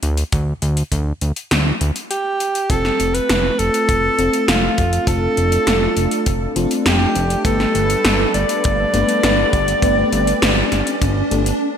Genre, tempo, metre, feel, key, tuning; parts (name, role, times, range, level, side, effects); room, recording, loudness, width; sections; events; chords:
synthwave; 101 BPM; 4/4; straight; A4 = 441 Hz
fat analog bass; bass; 0.0-11.5 s; F1 to D2; -20 LUFS; equal
80s electronic pad drums; drums; 0.0-11.6 s; hi-hat, snare drum; -21 LUFS; equal; gated reverb
kick drum; drums; 0.3-11.1 s; -21 LUFS; equal
breathy alto saxophone; melody; 2.1-11.6 s; F4 to D5; -19 LUFS; right 1 dB; ping-pong delay
brassy analog pad; sustained chords; 2.7-11.6 s; G3 to B4; -25 LUFS; right 1 dB; chorus, sidechain pumping
FM electric piano with soft pad layer; stabs; 2.7-11.4 s; A3 to B4; -24 LUFS; left 3 dB; chorus, cassette tape
riser; sound effects; 5.1-11.6 s; -27 LUFS; equal
moderate lush hall reverb, RT60 2.4 s; bright 1980s-style digital production; -15 LUFS; side -8 dB against mid
0.0-2.7 A section; 2.7-11.8 B section
break 2.1-2.7; riser 5.1-11.6; stop 11.6
0.0 G5/D; 2.7 F; 7.5 Gadd9